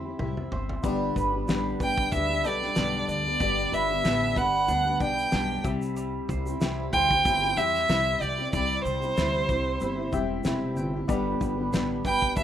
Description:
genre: acoustic pop.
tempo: 94 BPM.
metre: 4/4.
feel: swing 55% on 16ths.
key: G major.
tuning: A4 = 441 Hz.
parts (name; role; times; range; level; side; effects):
fingerpicked plugged-in steel-string acoustic guitar; accompaniment; 0.0-12.4 s; G2 to G4; -31 LUFS; left 2 dB; double-tracked left and right.
mandolin; arpeggios; 0.0-12.4 s; G3 to G5; -34 LUFS; right 3 dB; digital delay.
upright bass; bass; 0.0-12.4 s; E1 to E2; -33 LUFS; equal; none.
loose indie drum kit; drums; 0.2-12.4 s; kick drum, shaker, snare drum, toms; -31 LUFS; equal; none.
warm upright piano; accompaniment; 0.8-12.4 s; B3 to B5; -37 LUFS; left 7 dB; none.
rich violin; melody; 1.8-12.4 s; C5 to G5; -25 LUFS; right 1 dB; none.
room: moderate studio reverb, RT60 0.5 s.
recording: rough home demo mix.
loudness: -24 LUFS.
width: side -10 dB against mid.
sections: 0.8-12.4 A section.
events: drum fill 0.0-0.8.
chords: 0.0 C; 0.8 G; 5.7 C; 11.1 G.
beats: 0.19 | 0.83 1.48 2.12 2.76 | 3.41 4.05 4.69 5.33 | 5.97 6.61 7.25 7.89 | 8.53 9.17 9.81 10.45 | 11.09 11.73 12.37.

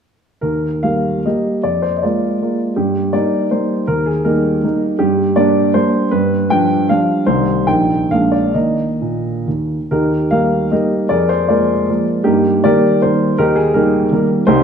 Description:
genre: classical, romantic triple-time dance for piano with dotted rhythms.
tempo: 128-171 BPM.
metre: 3/4.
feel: rubato.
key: Eb major.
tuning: A4 = 439 Hz.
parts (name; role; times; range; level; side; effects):
warm baby grand piano; solo; 0.4-14.6 s; Bb1 to G5; -13 LUFS; equal; none.
room: wet recital hall reverb, RT60 1.3 s.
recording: dark, warm production.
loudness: -13 LUFS.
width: side -7 dB against mid.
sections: 0.4-9.9 A section; 9.9-14.6 A section.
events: none.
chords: 0.4 Eb; 1.6 Bb7/F; 2.8 Eb/G; 3.9 Eb; 5.0 Gm; 6.1 G7; 7.3 Cm; 7.7 Eb/Bb; 8.1 Bb7; 8.5 Eb5; 9.9 Eb; 11.1 Bb7/F; 12.3 Eb/G; 13.4 Eb.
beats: | 0.42 0.83 1.25 | 1.64 2.03 2.41 | 2.76 3.13 3.52 | 3.88 4.26 4.64 | 5.00 5.36 5.75 | 6.11 6.50 6.89 | 7.26 7.67 8.10 | 8.55 9.01 9.46 | 9.90 10.30 10.72 | 11.10 11.49 11.89 | 12.25 12.64 13.03 | 13.39 13.75 14.11 | 14.48.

